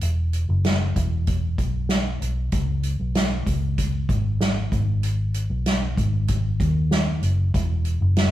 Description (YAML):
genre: piano-driven pop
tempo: 96 BPM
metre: 4/4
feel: straight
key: G# minor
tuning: A4 = 440 Hz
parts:
  - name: vintage muted fingered electric bass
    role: bass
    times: 0.0-8.3 s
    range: E1 to D#2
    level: -22 LUFS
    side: equal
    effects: none
  - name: soft-mallet drum kit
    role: drums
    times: 0.0-8.3 s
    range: hi-hat, kick drum, snare drum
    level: -24 LUFS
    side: equal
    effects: none
room: light reverb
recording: rough rehearsal-room recording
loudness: -20 LUFS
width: side -13 dB against mid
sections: 0.0-8.3 A section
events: none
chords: none